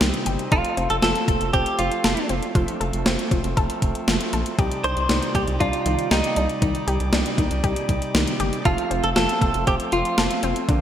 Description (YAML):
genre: synth-pop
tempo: 118 BPM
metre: 4/4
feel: straight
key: unclear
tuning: A4 = 441 Hz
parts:
  - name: pipe organ, cornet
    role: sustained chords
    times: 0.0-10.8 s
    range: C3 to D5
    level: -29 LUFS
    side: right 1 dB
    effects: none
  - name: analog pluck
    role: arpeggios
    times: 0.0-10.8 s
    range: D3 to A4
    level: -28 LUFS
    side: left 3 dB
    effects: chorus, digital delay
  - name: rubbery square bass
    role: bass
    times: 0.0-10.8 s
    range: F1 to C2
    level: -26 LUFS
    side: equal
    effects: none
  - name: gated 80s digital drum machine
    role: drums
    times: 0.0-10.8 s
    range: hi-hat, kick drum, snare drum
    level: -23 LUFS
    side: equal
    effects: gated reverb, gated reverb snare
  - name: direct-recorded clean electric guitar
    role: melody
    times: 0.5-10.4 s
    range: Eb4 to C5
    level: -24 LUFS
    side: right 1 dB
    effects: wide subtle chorus, digital delay
room: moderate lush hall reverb, RT60 2.4 s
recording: bright 1980s-style digital production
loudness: -19 LUFS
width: side -10 dB against mid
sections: 0.0-10.8 A section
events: none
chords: 0.0 Cmadd9; 0.5 F; 4.6 Cmadd9; 8.7 F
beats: 0.01 | 0.52 1.03 1.53 2.04 | 2.55 3.06 3.57 4.08 | 4.59 5.09 5.60 6.11 | 6.62 7.13 7.64 8.14 | 8.65 9.16 9.67 10.18 | 10.69